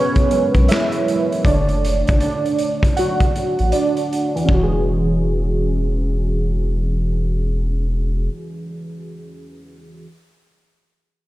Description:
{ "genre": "lo-fi hip hop", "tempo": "79 BPM", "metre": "4/4", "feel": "swing 62% on 16ths", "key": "E mixolydian", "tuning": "A4 = 441 Hz", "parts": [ { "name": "warbly lo-fi synth keys", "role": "accompaniment", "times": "0.0-10.0 s", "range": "D3 to F#5", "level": "-20 LUFS", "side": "right 2 dB", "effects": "chorus, cassette tape, low-pass filter" }, { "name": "raw garage drum kit", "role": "drums", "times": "0.2-4.7 s", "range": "finger snaps, hi-hat, kick drum, snare drum", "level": "-20 LUFS", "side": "equal", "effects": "none" }, { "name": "warm sub bass", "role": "bass", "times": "0.6-8.3 s", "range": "E1 to B1", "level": "-19 LUFS", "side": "equal", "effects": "none" } ], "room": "light reverb, small room ambience", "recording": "none", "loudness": "-16 LUFS", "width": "side -16 dB against mid", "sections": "0.0-4.5 A section; 4.5-7.5 B section", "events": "synth keys solo 0.0-4.5; filter sweep on synth keys 0.0-4.5", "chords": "0.0 E69; 1.4 Dmaj7/F#; 4.5 E69", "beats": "0.69 | 1.44 2.20 2.96 3.72 | 4.48 5.24 6.00 6.76" }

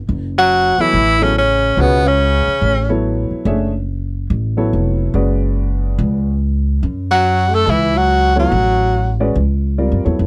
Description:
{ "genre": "modal jazz", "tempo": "142 BPM", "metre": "4/4", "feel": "swing 64% on 8ths", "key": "F# minor", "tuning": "A4 = 439 Hz", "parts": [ { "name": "upright bass", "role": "bass", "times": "0.0-10.3 s", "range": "E#1 to F#2", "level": "-19 LUFS", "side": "equal", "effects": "none" }, { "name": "bright tenor saxophone", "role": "melody", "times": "0.4-2.9, 7.1-9.2 s", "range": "B3 to A4", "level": "-17 LUFS", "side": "equal", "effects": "none" }, { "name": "brilliant trombone", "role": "second line", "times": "0.4-2.9, 7.1-9.2 s", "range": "B2 to A3", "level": "-23 LUFS", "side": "equal", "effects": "none" }, { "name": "warm grand piano", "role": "accompaniment", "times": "0.8-10.3 s", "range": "C#3 to E5", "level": "-22 LUFS", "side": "equal", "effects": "none" } ], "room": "little or no reverb", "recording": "close, detailed microphones", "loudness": "-16 LUFS", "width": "mono", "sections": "0.1-10.3 A section", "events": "none", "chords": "0.1 F#m11", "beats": "| 0.09 0.52 0.94 1.36 | 1.78 2.20 2.62 3.04 | 3.46 3.88 4.30 4.73 | 5.15 5.57 5.99 6.41 | 6.83 7.25 7.67 8.09 | 8.52 8.94 9.36 9.78 | 10.20" }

